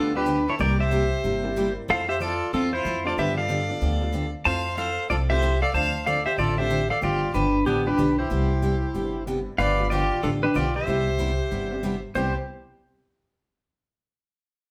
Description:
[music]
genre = country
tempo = 187 BPM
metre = 4/4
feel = swing 62% on 8ths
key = C major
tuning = A4 = 442 Hz
[part]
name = pedal steel guitar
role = melody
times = 0.0-12.3 s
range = B3 to A5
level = -27 LUFS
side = equal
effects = none
[part]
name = clear fiddle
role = second line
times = 0.0-12.3 s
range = D4 to F5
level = -34 LUFS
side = equal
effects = none
[part]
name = picked steel-string acoustic guitar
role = accompaniment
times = 0.0-12.3 s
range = C3 to A4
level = -32 LUFS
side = equal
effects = none
[part]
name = upright bass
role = bass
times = 0.0-12.3 s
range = G1 to G2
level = -30 LUFS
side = equal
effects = none
[part]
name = honky-tonk upright piano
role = accompaniment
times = 0.1-12.3 s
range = G3 to G4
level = -38 LUFS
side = equal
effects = none
[sound]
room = wet studio reverb, RT60 0.9 s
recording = band playing live in one room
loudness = -24 LUFS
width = mono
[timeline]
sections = 0.0-9.6 A section; 9.6-12.2 B section; 12.2-13.4 C section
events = none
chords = 0.0 G7; 0.6 C7; 1.9 Fmaj7; 3.2 G7; 4.5 Fmaj7; 5.7 Dm7; 7.0 G7; 8.3 Cmaj7; 9.6 G7; 10.9 Cmaj7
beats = 0.27 | 0.59 0.91 1.24 1.56 | 1.88 2.20 2.53 2.85 | 3.17 3.49 3.81 4.13 | 4.46 4.78 5.10 5.42 | 5.74 6.06 6.38 6.70 | 7.02 7.34 7.66 7.98 | 8.30 8.62 8.95 9.27 | 9.59 9.91 10.23 10.55 | 10.87 11.19 11.51 11.83 | 12.15

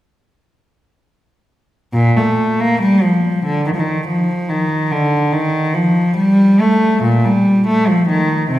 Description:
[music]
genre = classical, baroque-style suite movement for unaccompanied cello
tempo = 71 BPM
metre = 3/4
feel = rubato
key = unclear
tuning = A4 = 442 Hz
[part]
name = rich cello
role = solo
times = 1.9-8.6 s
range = Bb2 to Bb3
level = -12 LUFS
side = equal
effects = none
[sound]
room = wet recital hall reverb, RT60 1.9 s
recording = recorded in a church or concert hall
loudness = -12 LUFS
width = side -14 dB against mid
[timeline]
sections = 1.9-8.6 A section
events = none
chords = none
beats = | 1.93 2.81 3.66 | 4.49 5.32 6.17 | 7.03 7.88

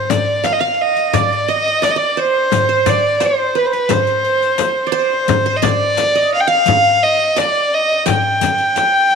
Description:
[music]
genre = Arabic maqam ensemble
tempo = 87 BPM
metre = 4/4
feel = straight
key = unclear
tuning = A4 = 441 Hz
[part]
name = warm violin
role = melody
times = 0.0-9.2 s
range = B4 to G5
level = -14 LUFS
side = equal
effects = none
[part]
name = qanun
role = second line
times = 0.0-9.2 s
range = B4 to G5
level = -20 LUFS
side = right 8 dB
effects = slapback echo
[part]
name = darbuka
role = percussion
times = 0.1-9.2 s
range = none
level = -23 LUFS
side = left 7 dB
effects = none
[part]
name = frame drum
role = percussion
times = 0.1-8.9 s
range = none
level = -22 LUFS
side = left 10 dB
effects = none
[part]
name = riq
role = percussion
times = 0.1-9.2 s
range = none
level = -26 LUFS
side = left 13 dB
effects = none
[sound]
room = moderate echo chamber reverb, RT60 2.1 s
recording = 1960s-style stereo with parts hard left and right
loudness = -13 LUFS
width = side -6 dB against mid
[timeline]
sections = 0.0-9.2 A section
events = none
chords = none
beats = 0.45 1.14 1.83 | 2.52 3.21 3.90 4.60 | 5.29 5.98 6.67 7.37 | 8.06 8.75

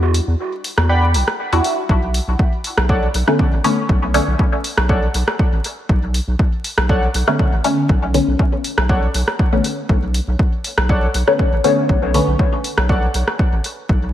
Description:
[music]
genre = dub techno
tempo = 120 BPM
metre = 4/4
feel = straight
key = unclear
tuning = A4 = 444 Hz
[part]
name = round analog bass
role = bass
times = 0.0-14.1 s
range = A1 to E2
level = -18 LUFS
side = equal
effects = sidechain pumping
[part]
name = punchy analog drum machine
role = drums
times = 0.1-13.7 s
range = hi-hat, rim click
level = -22 LUFS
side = equal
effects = dub echo
[part]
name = warbly lo-fi synth keys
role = riff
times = 0.9-13.1 s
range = A4 to B5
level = -25 LUFS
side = equal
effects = chorus, sidechain pumping, dub echo
[part]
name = filtered dub chord stab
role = stabs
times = 1.5-12.4 s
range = D3 to F#4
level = -19 LUFS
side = left 1 dB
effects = phaser, sidechain pumping, dub echo
[part]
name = electronic kick drum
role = drums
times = 1.9-14.0 s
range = none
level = -16 LUFS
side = equal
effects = none
[sound]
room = light reverb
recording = vinyl crackle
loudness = -15 LUFS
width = side -12 dB against mid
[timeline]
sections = 0.0-14.1 A section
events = break 0.0-1.9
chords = 0.0 Em9; 1.9 Bm9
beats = 0.39 0.89 1.39 | 1.89 2.39 2.89 3.39 | 3.89 4.39 4.89 5.39 | 5.89 6.39 6.89 7.39 | 7.89 8.39 8.89 9.39 | 9.89 10.39 10.89 11.39 | 11.89 12.39 12.89 13.39 | 13.89

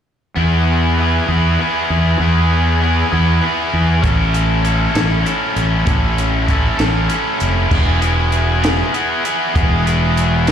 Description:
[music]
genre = indie rock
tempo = 65 BPM (dotted quarters)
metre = 6/8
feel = straight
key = E major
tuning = A4 = 440 Hz
[part]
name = distorted electric guitar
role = riff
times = 0.4-10.5 s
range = B3 to A4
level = -17 LUFS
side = left 1 dB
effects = overdrive, slapback echo
[part]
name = fuzz fingered electric bass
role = bass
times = 0.4-10.5 s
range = E1 to E2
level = -16 LUFS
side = equal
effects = overdrive
[part]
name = compact cocktail drum kit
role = drums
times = 4.0-10.5 s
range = crash cymbal, hi-hat, kick drum, snare drum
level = -20 LUFS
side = equal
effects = none
[sound]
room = little or no reverb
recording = live gig heard through the venue's PA, club reverb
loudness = -13 LUFS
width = side -8 dB against mid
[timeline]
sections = 0.4-7.7 A section; 7.7-10.5 B section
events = none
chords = 0.4 E; 4.0 A; 7.7 E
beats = | 0.37 1.29 | 2.21 3.13 | 4.04 4.96 | 5.88 6.80 | 7.72 8.64 | 9.56 10.48

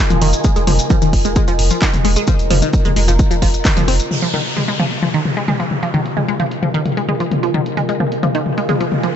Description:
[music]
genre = driving peak-time techno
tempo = 131 BPM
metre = 4/4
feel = straight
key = F minor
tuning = A4 = 437 Hz
[part]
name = deep dark ambient pad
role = texture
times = 0.0-9.2 s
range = F4 to Bb5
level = -24 LUFS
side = right 2 dB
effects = chorus, built-in reverb, sidechain pumping
[part]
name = resonant blip pluck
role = riff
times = 0.1-9.1 s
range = Eb3 to C4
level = -20 LUFS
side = equal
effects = phaser, cassette tape, sidechain pumping, ping-pong delay
[part]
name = saturated sub bass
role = bass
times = 0.1-4.0 s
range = F1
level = -17 LUFS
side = equal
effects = overdrive, sidechain pumping, low-pass filter
[part]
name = punchy analog drum machine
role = drums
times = 0.1-9.1 s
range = handclaps, hi-hat, shaker, toms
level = -20 LUFS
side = left 2 dB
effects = sidechain pumping on hats, low-pass filter on hats, sidechain pumping on perc, low-pass filter on perc, low-pass filter on snare, sidechain pumping on toms, low-pass filter on toms, low-pass filter on room
[part]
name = electronic kick drum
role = drums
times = 0.4-3.7 s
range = none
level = -15 LUFS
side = equal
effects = overdrive
[part]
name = downlifter and riser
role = sound effects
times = 4.1-9.2 s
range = none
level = -26 LUFS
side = equal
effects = none
[sound]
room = little or no reverb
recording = nothing above 8.0 kHz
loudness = -14 LUFS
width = side -9 dB against mid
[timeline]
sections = 0.0-4.1 A section; 4.1-9.2 B section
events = drop 0.0-4.1; band accent 3.6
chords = 0.0 Fm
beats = | 0.44 0.90 1.36 1.82 | 2.28 2.73 3.19 3.65 | 4.11 4.57 5.02 5.48 | 5.94 6.40 6.86 7.31 | 7.77 8.23 8.69 9.15

